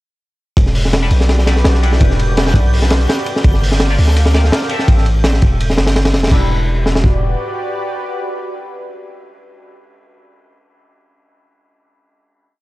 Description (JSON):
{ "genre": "drum and bass, jungle", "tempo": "167 BPM", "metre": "4/4", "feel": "straight", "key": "E minor", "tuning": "A4 = 440 Hz", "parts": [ { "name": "lush unison pad", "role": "sustained chords", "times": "0.7-10.0 s", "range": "F#4 to F5", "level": "-25 LUFS", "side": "equal", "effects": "chorus" }, { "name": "long sustained 808-style bass", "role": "bass", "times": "0.6-7.4 s", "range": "E1 to D2", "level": "-14 LUFS", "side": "equal", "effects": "none" }, { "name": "crunchy breakbeat drum kit", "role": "drums", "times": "0.6-7.1 s", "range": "crash cymbal, hi-hat, kick drum, ride cymbal, snare drum", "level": "-14 LUFS", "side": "equal", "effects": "none" }, { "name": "twinkling granular texture", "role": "texture", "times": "1.1-6.3 s", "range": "G6", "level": "-31 LUFS", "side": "right 3 dB", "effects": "built-in reverb" }, { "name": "band-passed chord stab", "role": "stabs", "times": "1.0-10.6 s", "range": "G3 to E5", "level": "-26 LUFS", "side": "left 2 dB", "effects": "phaser, dub echo" } ], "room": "small room reverb", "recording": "dark, warm production", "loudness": "-12 LUFS", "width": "side -18 dB against mid", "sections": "0.6-6.3 drop; 6.3-9.2 final chord", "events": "drop 0.6-6.3", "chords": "0.6 Em7; 3.4 Gm7; 4.9 Am7; 6.3 Em7" }